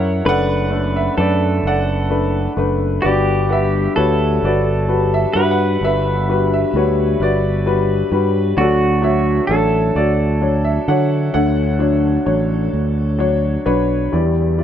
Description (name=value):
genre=acoustic folk-pop ballad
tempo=43 BPM (dotted quarters)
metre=6/8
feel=straight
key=unclear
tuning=A4 = 440 Hz
part: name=clear upright piano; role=melody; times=0.0-14.6 s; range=F#1 to F#5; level=-18 LUFS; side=left 2 dB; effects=plate reverb
part: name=pedal steel guitar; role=second line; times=0.0-13.6 s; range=F#4 to C#5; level=-23 LUFS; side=right 2 dB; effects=none
part: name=fingered electric bass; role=bass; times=0.0-14.6 s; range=F#1 to D3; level=-18 LUFS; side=right 1 dB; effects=none
room=light reverb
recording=none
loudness=-14 LUFS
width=side -9 dB against mid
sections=0.0-14.1 A section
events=none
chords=0.3 Bm7/F#; 3.0 Gmaj7; 8.6 Dmaj7; 14.1 Em7